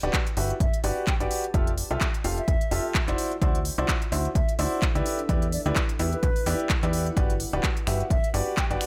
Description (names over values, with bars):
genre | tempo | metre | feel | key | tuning
piano house | 128 BPM | 4/4 | swing 56% on 16ths | G major | A4 = 440 Hz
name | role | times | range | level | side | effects
clear upright piano | riff | 0.0-8.9 s | E4 to F5 | -32 LUFS | equal | sidechain pumping, tape echo
plucky analog bass | bass | 0.0-8.8 s | D1 to E2 | -31 LUFS | equal | sidechain pumping
house drum kit | drums | 0.0-8.9 s | finger snaps, handclaps, hi-hat | -34 LUFS | equal | none
granular cloud pad | texture | 0.3-8.9 s | D4 to A5 | -44 LUFS | equal | none
electronic kick drum | drums | 0.1-8.7 s | none | -28 LUFS | equal | none
mellow hollow silver concert flute | melody | 0.6-8.8 s | B4 to G5 | -38 LUFS | equal | tape echo
room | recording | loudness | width
little or no reverb | none | -25 LUFS | mono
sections
0.0-8.9 A section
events
none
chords
0.0 Gmaj7; 1.5 Fmaj9; 3.2 D9; 5.1 Em7; 7.2 Gmaj7